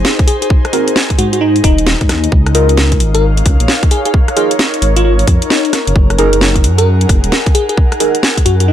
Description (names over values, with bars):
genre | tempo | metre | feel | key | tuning
UK garage, two-step garage | 132 BPM | 4/4 | swing 64% on 16ths | Eb dorian | A4 = 441 Hz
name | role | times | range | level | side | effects
deep mellow chord stab | stabs | 0.0-8.2 s | C4 to Bb4 | -17 LUFS | right 1 dB | chorus, dub echo
dark detuned saw bass | bass | 0.0-8.7 s | Eb1 to Ab2 | -12 LUFS | equal | tube saturation
garage drum kit | drums | 0.0-8.7 s | hi-hat, rim click, snare drum | -15 LUFS | equal | none
airy breathy pad | texture | 0.0-8.7 s | Eb4 to Gb5 | -19 LUFS | left 1 dB | chorus, sidechain pumping
electronic kick drum | drums | 0.2-8.4 s | none | -11 LUFS | equal | none
bell-like FM electric piano | melody | 0.3-8.7 s | Eb4 to Bb4 | -17 LUFS | left 1 dB | chorus, phaser, cassette tape, dub echo
room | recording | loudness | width
light reverb | none | -9 LUFS | side -11 dB against mid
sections
0.0-8.7 A section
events
none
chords
0.0 Ab7; 2.3 Db69; 5.7 Ebm7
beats
0.05 | 0.50 0.96 1.41 1.87 | 2.32 2.77 3.23 3.68 | 4.14 4.59 5.05 5.50 | 5.96 6.41 6.87 7.32 | 7.78 8.23 8.68